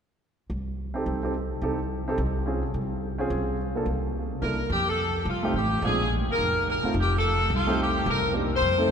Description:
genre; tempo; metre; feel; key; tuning
jazz, big band swing; 214 BPM; 4/4; swing 62% on 8ths; unclear; A4 = 440 Hz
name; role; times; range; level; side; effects
upright bass; bass; 0.5-8.9 s; F1 to F2; -28 LUFS; equal; none
warm baby grand piano; accompaniment; 0.9-8.9 s; Ab3 to A4; -29 LUFS; right 2 dB; none
edgy saxophone section; melody; 4.4-8.9 s; F4 to C5; -25 LUFS; left 1 dB; none
room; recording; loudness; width
wet cathedral reverb, RT60 5.5 s; recorded in a church or concert hall; -24 LUFS; side -7 dB against mid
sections
0.2-4.7 A section; 4.7-8.9 B section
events
none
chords
0.2 Cm6; 2.5 Dbmaj7/C; 3.6 C13sus4; 4.1 C7; 4.7 F; 5.8 Bb7; 6.9 F7; 8.1 Cm7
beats
| 0.21 0.50 0.78 1.06 | 1.34 1.62 1.90 2.18 | 2.46 2.74 3.02 3.30 | 3.58 3.86 4.14 4.42 | 4.70 4.98 5.26 5.54 | 5.82 6.10 6.38 6.66 | 6.93 7.21 7.49 7.77 | 8.05 8.33 8.61 8.89

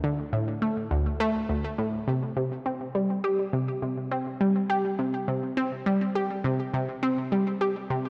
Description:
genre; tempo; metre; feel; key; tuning
ambient; 103 BPM; 4/4; straight; unclear; A4 = 440 Hz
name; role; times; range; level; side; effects
analog pluck; solo; 0.0-8.1 s; D2 to G4; -28 LUFS; equal; chorus, delay
room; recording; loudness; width
wet lush hall reverb, RT60 3.0 s; cassette tape, faint mains hum; -28 LUFS; mono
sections
0.0-8.1 A section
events
none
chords
none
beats
0.33 0.91 1.49 | 2.08 2.66 3.24 3.82 | 4.41 4.99 5.57 6.15 | 6.74 7.32 7.90

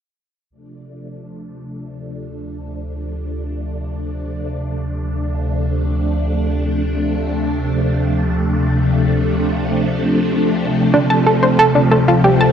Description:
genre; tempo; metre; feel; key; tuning
ambient, sequencer-driven space music; free time; none; none; D minor; A4 = 440 Hz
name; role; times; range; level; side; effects
phased string machine; sustained chords; 0.5-12.5 s; C3 to D4; -18 LUFS; equal; ensemble chorus, phaser
round analog bass; bass; 0.5-12.5 s; D2; -24 LUFS; equal; none
analog pluck; riff; 10.9-12.5 s; D4 to A5; -13 LUFS; right 1 dB; chorus, ping-pong delay
room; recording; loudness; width
wet plate reverb, RT60 3.2 s; dark, warm production; -15 LUFS; side -8 dB against mid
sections
0.5-12.5 A section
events
fade-in on string machine 0.5-12.5; fade-in on analog synth bass 0.5-12.5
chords
0.5 Dm7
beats
free time

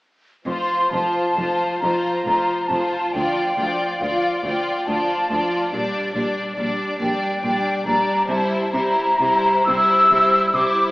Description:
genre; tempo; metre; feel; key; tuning
classical, slow romantic movement for symphony orchestra; 46 BPM (dotted quarters); 6/8; uneven beats, rubato; F major; A4 = 440 Hz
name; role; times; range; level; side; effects
warm studio violin section; melody; 0.5-10.9 s; C5 to D5; -27 LUFS; left 1 dB; none
flute section; second line; 0.5-10.9 s; F5 to E6; -19 LUFS; equal; none
rich studio violin section; second line; 0.5-10.9 s; D4 to F4; -28 LUFS; left 1 dB; none
rich studio viola section; accompaniment; 0.5-10.9 s; F3 to G3; -26 LUFS; equal; none
rich studio cello section; bass; 0.5-10.6 s; D2 to C3; -30 LUFS; equal; none
rich studio double bass section; bass; 0.5-10.6 s; F1 to D2; -36 LUFS; right 1 dB; none
room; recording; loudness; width
wet scoring stage reverb, RT60 1.8 s; AM radio sound; -17 LUFS; side -20 dB against mid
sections
0.5-10.9 A section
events
none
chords
0.5 F; 3.1 Dm; 5.7 Gm/Bb; 8.3 C7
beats
| 0.46 1.82 | 3.14 4.44 | 5.73 7.00 | 8.28 9.67

